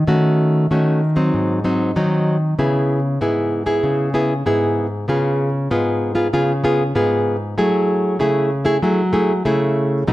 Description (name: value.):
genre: samba.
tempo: 96 BPM.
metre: 4/4.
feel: straight.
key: unclear.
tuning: A4 = 440 Hz.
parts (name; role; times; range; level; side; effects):
nylon-string guitar; solo; 0.0-10.1 s; G#2 to G#4; -16 LUFS; equal; none.
room: wet large studio reverb, RT60 1.5 s.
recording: none.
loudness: -16 LUFS.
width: side -16 dB against mid.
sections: 0.0-10.1 A section.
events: none.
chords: 0.1 D#m7b5; 1.3 G#7; 2.6 C#m7; 5.1 C#7; 7.6 F#m9.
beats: | 0.08 0.70 1.33 1.96 | 2.58 3.21 3.83 4.46 | 5.08 5.71 6.33 6.95 | 7.58 8.20 8.83 9.45 | 10.07.